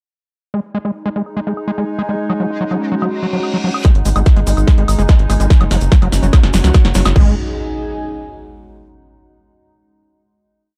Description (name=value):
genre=psychedelic trance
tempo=145 BPM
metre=4/4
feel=straight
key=unclear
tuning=A4 = 440 Hz
part: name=evolving wavetable pad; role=sustained chords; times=1.3-7.2 s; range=G#3 to D#4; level=-28 LUFS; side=equal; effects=chorus, built-in reverb, sidechain pumping
part: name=overdriven acid bass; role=riff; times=0.5-7.4 s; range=F#3 to G#3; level=-23 LUFS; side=equal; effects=distortion, sidechain pumping, digital delay
part: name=techno drum kit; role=drums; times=0.5-7.2 s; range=crash cymbal, hi-hat, snare drum, woodblock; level=-24 LUFS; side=equal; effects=low-pass filter on hats, low-pass filter on perc, low-pass filter on snare, low-pass filter on cymbals, low-pass filter on room
part: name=airy breathy pad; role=texture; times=0.5-8.8 s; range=C#4 to G#5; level=-27 LUFS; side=equal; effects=chorus, sidechain pumping
part: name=metallic wobble bass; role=second line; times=2.5-2.9 s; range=G#3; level=-37 LUFS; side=equal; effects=analog chorus, sidechain pumping, high-pass filter, digital delay
part: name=reverse cymbal and impact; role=sound effects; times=3.1-3.8, 7.4-8.8 s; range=none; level=-29 LUFS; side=equal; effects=none
part: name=electronic kick drum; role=drums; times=3.8-7.2 s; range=none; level=-11 LUFS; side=equal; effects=none
part: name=tube shaker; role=percussion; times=3.8-7.1 s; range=none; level=-33 LUFS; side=equal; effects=none
part: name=tight sequencer bass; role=bass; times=4.0-7.4 s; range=F#1 to C#2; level=-17 LUFS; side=equal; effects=none
room=digital ambience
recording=dark, warm production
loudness=-15 LUFS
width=mono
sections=0.5-3.8 intro; 3.8-7.2 build; 7.2-8.8 final chord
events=filter sweep on ambient pad 0.5-3.8; reverse cymbal 3.1-3.8; build-up 3.8-7.2; drum fill 3.8-7.2; filter sweep on acid bass 3.8-7.2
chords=0.5 G#5; 2.2 F#5; 7.2 G#5